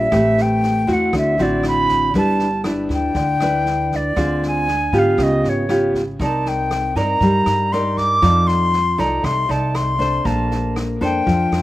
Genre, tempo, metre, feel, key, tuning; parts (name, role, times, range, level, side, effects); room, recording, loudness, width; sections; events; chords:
bossa nova; 118 BPM; 4/4; straight; G minor; A4 = 440 Hz
silver concert flute; melody; 0.0-11.6 s; C#5 to D6; -19 LUFS; equal
nylon-string guitar; accompaniment; 0.0-11.6 s; C3 to D5; -19 LUFS; equal
upright bass; bass; 0.0-11.6 s; G1 to Ab2; -24 LUFS; right 1 dB
open jazz drum kit; drums; 0.1-11.6 s; kick drum, rim click, snare drum; -29 LUFS; equal
little or no reverb; recorded outdoors, with no room sound; -16 LUFS; side -15 dB against mid
0.0-11.6 A section
0.1 Am9; 1.1 D9; 2.1 G6; 4.2 Dm7b5; 5.2 C#7#11; 6.2 Cm9; 8.2 F6; 10.3 Bbmaj9